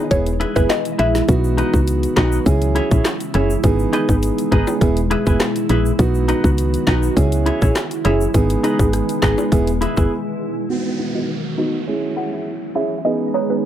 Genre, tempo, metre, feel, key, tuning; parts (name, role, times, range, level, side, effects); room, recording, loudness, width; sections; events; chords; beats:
dancehall; 102 BPM; 4/4; straight; A4 = 439 Hz
warm grand piano; accompaniment; 0.0-13.7 s; B3 to G#4; -21 LUFS; right 3 dB; low-pass filter
glassy FM pad; sustained chords; 0.0-13.7 s; B2 to G#4; -24 LUFS; equal; ensemble chorus, built-in reverb, sidechain pumping, low-pass filter
semi-hollow electric guitar; arpeggios; 0.0-13.6 s; D#4 to E5; -23 LUFS; left 2 dB; harmonic tremolo, low-pass filter
mallet-like synth pluck; melody; 0.1-1.1, 10.7-13.6 s; B4 to F#5; -23 LUFS; equal; chorus, phaser, low-pass filter, analog delay
woody FM bass; bass; 0.1-10.1 s; E1 to C#2; -18 LUFS; equal
island pop drum kit; drums; 0.1-10.1 s; handclaps, hi-hat, kick drum, rim click, snare drum; -19 LUFS; equal
egg shaker and timbales; percussion; 0.1-10.1 s; -33 LUFS; left 5 dB
downlifter; sound effects; 10.7-13.7 s; -32 LUFS; right 3 dB
digital ambience; echo-heavy mix; -15 LUFS; side -11 dB against mid
0.0-10.7 A section; 10.7-13.7 B section
break 10.1-10.7; filter sweep 10.7-13.7
0.1 E; 1.3 B; 2.5 C#m; 3.6 G#m; 4.8 E; 6.0 B; 7.2 C#m; 8.3 G#m; 9.5 E; 10.7 B; 11.9 C#m; 13.1 G#m
0.11 0.70 | 1.28 1.87 2.46 3.05 | 3.64 4.23 4.82 5.40 | 5.99 6.58 7.17 7.76 | 8.34 8.93 9.52 10.11 | 10.70 11.29 11.87 12.46 | 13.05 13.64